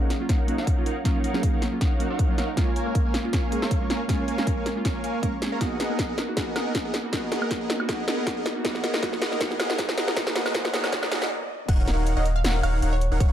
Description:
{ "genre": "future bass", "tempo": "158 BPM", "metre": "4/4", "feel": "swing 54% on 16ths, half-time", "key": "Eb minor", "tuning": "A4 = 439 Hz", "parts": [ { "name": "glassy digital keys", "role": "accompaniment", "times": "0.0-11.3 s", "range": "Gb3 to Bb4", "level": "-30 LUFS", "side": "right 2 dB", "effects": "chorus, sidechain pumping, tape echo" }, { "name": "supersaw chords", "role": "riff", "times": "0.0-13.3 s", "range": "Bb3 to Db6", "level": "-30 LUFS", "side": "right 1 dB", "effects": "sidechain pumping, low-pass filter, tape echo" }, { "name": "big-room dance drum kit", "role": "drums", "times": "0.1-13.3 s", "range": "crash cymbal, hi-hat, snare drum, woodblock", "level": "-28 LUFS", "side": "equal", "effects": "small room ambience" }, { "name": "electronic kick drum", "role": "drums", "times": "0.3-13.3 s", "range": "none", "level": "-25 LUFS", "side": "equal", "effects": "small room ambience" }, { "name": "riser and noise sweep", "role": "sound effects", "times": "7.0-11.7 s", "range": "none", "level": "-37 LUFS", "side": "left 1 dB", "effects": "none" }, { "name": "wide unison pluck", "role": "melody", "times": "11.7-13.3 s", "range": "Db5 to Gb5", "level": "-33 LUFS", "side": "right 2 dB", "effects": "sidechain pumping, dub echo" }, { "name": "airy dreamy lead", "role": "arpeggios", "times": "11.7-13.3 s", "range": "Gb5", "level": "-36 LUFS", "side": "left 1 dB", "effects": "chorus, sidechain pumping, tape echo" }, { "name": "saturated sub bass", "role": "bass", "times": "11.7-13.3 s", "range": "Eb1", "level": "-23 LUFS", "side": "equal", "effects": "sidechain pumping" } ], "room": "light reverb", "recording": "dark, warm production, high-pass filter", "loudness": "-22 LUFS", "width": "side -10 dB against mid", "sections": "0.0-11.7 A section; 11.7-13.3 B section", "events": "build-up 0.0-11.7; drum fill 0.0-11.3; filter sweep 0.0-11.7; noise sweep 10.2-11.7; stop 11.3-11.7; drop 11.7-13.3", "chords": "0.0 Ebm7; 2.6 Bbm7; 5.6 Abm9/Bb; 11.7 Ebm7", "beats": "0.29 0.67 | 1.05 1.43 1.81 2.19 | 2.57 2.95 3.33 3.71 | 4.09 4.47 4.85 5.23 | 5.61 5.99 6.37 6.75 | 7.13 7.51 7.89 8.27 | 8.65 9.03 9.41 9.79 | 10.17 10.54 10.93 11.30 | 11.69 12.06 12.44 12.82 | 13.20" }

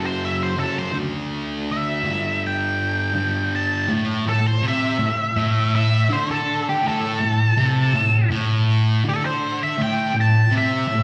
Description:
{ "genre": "rock", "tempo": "82 BPM", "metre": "4/4", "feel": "straight", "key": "unclear", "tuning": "A4 = 439 Hz", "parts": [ { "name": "octave-fuzz lead guitar", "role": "melody", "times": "0.0-11.0 s", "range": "G4 to A5", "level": "-25 LUFS", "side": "equal", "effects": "wah, distortion, plate reverb, slapback echo, tape echo" }, { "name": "thick fuzz guitar", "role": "riff", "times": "0.0-11.0 s", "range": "F#2 to D4", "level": "-23 LUFS", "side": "equal", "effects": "distortion, slapback echo" } ], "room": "moderate club reverb, RT60 0.6 s", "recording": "live gig heard through the venue's PA, recital hall reverb", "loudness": "-21 LUFS", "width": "mono", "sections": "0.0-3.9 A section; 3.9-11.0 B section", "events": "none", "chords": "0.0 F#5; 1.0 D5; 2.1 G5; 3.9 A5", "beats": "0.22 | 0.96 1.69 2.43 3.17 | 3.90 4.64 5.37 6.11 | 6.84 7.58 8.31 9.04 | 9.78 10.52" }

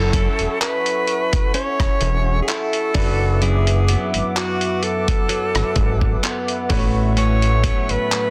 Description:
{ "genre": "contemporary R&B", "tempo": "64 BPM", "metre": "4/4", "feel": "swing 54% on 16ths", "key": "unclear", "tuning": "A4 = 439 Hz", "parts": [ { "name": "warm alto saxophone", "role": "melody", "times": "0.0-8.3 s", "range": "F#4 to C#5", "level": "-25 LUFS", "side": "equal", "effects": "none" }, { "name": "clear grand piano", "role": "accompaniment", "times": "0.0-8.3 s", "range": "F#3 to C#5", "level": "-34 LUFS", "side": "equal", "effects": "none" }, { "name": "hollow soft pad", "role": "sustained chords", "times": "0.0-8.3 s", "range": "A4 to D6", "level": "-31 LUFS", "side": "equal", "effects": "chorus, sidechain pumping" }, { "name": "direct-recorded clean electric guitar", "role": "arpeggios", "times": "0.0-8.3 s", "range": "F#2 to A4", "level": "-29 LUFS", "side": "equal", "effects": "spring reverb" }, { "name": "fat analog bass", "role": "bass", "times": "0.0-8.0 s", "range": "E1 to A1", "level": "-21 LUFS", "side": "equal", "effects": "none" }, { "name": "dusty soul sampler-style drum kit", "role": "drums", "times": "0.1-8.3 s", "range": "handclaps, hi-hat, kick drum, rim click", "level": "-24 LUFS", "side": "equal", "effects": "vintage 12-bit sampler grit" } ], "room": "little or no reverb", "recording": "dense, heavily limited modern master", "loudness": "-19 LUFS", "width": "mono", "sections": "0.0-8.3 A section", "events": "none", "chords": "0.0 F#m7; 2.9 D69/F#; 6.7 A69", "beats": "0.61 1.54 2.48 | 3.42 4.36 5.29 6.23 | 7.17 8.11" }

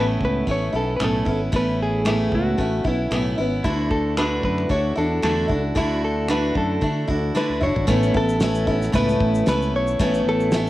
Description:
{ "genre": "acoustic pop", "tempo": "113 BPM", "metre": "4/4", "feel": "swing 55% on 16ths", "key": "A major", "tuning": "A4 = 441 Hz", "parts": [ { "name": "direct-recorded clean electric guitar", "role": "melody", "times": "0.0-10.7 s", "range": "E4 to C#5", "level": "-25 LUFS", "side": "equal", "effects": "cassette tape" }, { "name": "picked steel-string acoustic guitar", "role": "accompaniment", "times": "0.0-10.7 s", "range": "A2 to F#4", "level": "-22 LUFS", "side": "equal", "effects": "cassette tape" }, { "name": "fingered electric bass", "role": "bass", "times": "0.0-10.7 s", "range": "F#1 to D3", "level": "-25 LUFS", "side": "equal", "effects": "none" }, { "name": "cloth-damped thuddy drum kit", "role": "drums", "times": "0.2-10.7 s", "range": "finger snaps, kick drum, shaker, snare drum, toms", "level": "-26 LUFS", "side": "equal", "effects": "cassette tape" } ], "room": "light reverb, studio reverb", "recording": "home recording on cassette", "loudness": "-19 LUFS", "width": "side -16 dB against mid", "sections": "0.0-7.9 A section; 7.9-10.7 B section", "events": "drum fill 7.4-7.9", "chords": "0.0 Aadd9; 3.6 Dadd9; 7.9 Aadd9", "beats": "0.47 1.00 | 1.53 2.06 2.58 3.11 | 3.64 4.17 4.70 5.23 | 5.76 6.29 6.82 7.35 | 7.88 8.41 8.94 9.47 | 10.00 10.53" }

